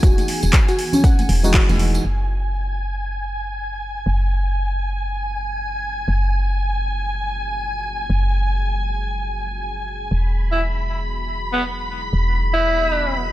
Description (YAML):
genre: deep house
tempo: 119 BPM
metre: 4/4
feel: swing 60% on 16ths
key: F# major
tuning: A4 = 440 Hz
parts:
  - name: dark analog pad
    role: sustained chords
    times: 0.0-13.3 s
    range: E3 to D#5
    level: -35 LUFS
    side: right 1 dB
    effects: chorus, sidechain pumping
  - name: warbly dusty pluck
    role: arpeggios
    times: 0.0-1.6 s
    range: C#4 to F#5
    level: -24 LUFS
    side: left 1 dB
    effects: lush chorus, sidechain pumping, analog delay
  - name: woody FM bass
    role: bass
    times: 0.0-13.3 s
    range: E1 to F#1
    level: -22 LUFS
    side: equal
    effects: sidechain pumping
  - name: deep house drum kit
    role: drums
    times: 0.0-2.0 s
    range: handclaps, hi-hat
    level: -24 LUFS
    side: equal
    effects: overdrive, low-pass filter on hats, small room ambience, low-pass filter on snare
  - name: electronic kick drum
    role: drums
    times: 0.0-1.7 s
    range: none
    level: -14 LUFS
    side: equal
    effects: overdrive, small room ambience
  - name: tambourine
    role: percussion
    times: 0.0-2.0 s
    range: none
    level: -32 LUFS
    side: right 4 dB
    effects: none
  - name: soft string machine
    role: texture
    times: 0.0-13.3 s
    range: G#5 to B5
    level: -26 LUFS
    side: equal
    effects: ensemble chorus
  - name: congas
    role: percussion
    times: 0.2-1.8 s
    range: none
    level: -27 LUFS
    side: right 3 dB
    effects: none
  - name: percussive organ stab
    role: stabs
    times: 1.4-2.0 s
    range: E3 to F#4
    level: -26 LUFS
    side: equal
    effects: chorus, sidechain pumping, analog delay
  - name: growling alto saxophone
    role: melody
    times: 10.5-13.2 s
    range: B3 to E4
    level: -21 LUFS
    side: equal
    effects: analog delay
room: digital ambience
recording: dry, gritty hardware recording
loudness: -18 LUFS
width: side -15 dB against mid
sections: 0.0-2.0 A section; 2.0-13.3 B section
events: band accent 1.5; filter sweep on analog synth pad 2.0-13.3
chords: 0.0 Emaj9; 2.0 F#maj9; 10.1 Emaj9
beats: | 0.03 0.53 1.04 1.54 | 2.05 2.55 3.05 3.56 | 4.06 4.57 5.07 5.58 | 6.08 6.58 7.09 7.59 | 8.10 8.60 9.11 9.61 | 10.11 10.62 11.12 11.63 | 12.13 12.63 13.14